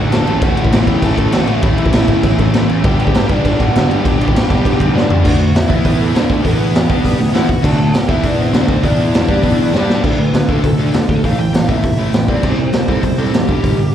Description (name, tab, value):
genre	punk rock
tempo	200 BPM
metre	4/4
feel	straight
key	D mixolydian from 5.2 s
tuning	A4 = 440 Hz
part	biting lead guitar	melody	0.0-13.9 s	A3 to A5	-22 LUFS	equal	overdrive, slapback echo
part	cranked stack guitar	riff	0.0-13.9 s	G2 to G4	-22 LUFS	left 9 dB	overdrive, slapback echo
part	crunchy overdriven guitar	riff	0.0-10.0 s	G2 to G4	-22 LUFS	left 2 dB	slapback echo
part	sludgy distorted guitar	riff	0.0-13.9 s	G2 to G4	-20 LUFS	right 8 dB	overdrive, slapback echo
part	fuzz picked electric bass	bass	0.0-13.9 s	G1 to G2	-19 LUFS	equal	overdrive
part	raw garage drum kit	drums	0.1-13.7 s	crash cymbal, hi-hat, kick drum, snare drum, toms	-15 LUFS	equal	none
room	little or no reverb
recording	live gig heard through the venue's PA, recital hall reverb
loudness	-11 LUFS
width	side -10 dB against mid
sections	0.0-5.2 A section; 5.2-10.0 B section; 10.0-13.9 C section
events	drum fill 4.9, 9.7-10.0; lead electric guitar solo 10.0-13.9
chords	0.3 A; 2.8 G; 5.2 D; 5.7 E5; 6.1 D5; 6.4 E5; 6.9 G5; 7.2 D; 8.1 E5; 8.5 D5; 8.8 E5; 9.3 G5; 9.4 E5; 9.7 G5; 10.0 D5; 11.2 A5; 12.3 C5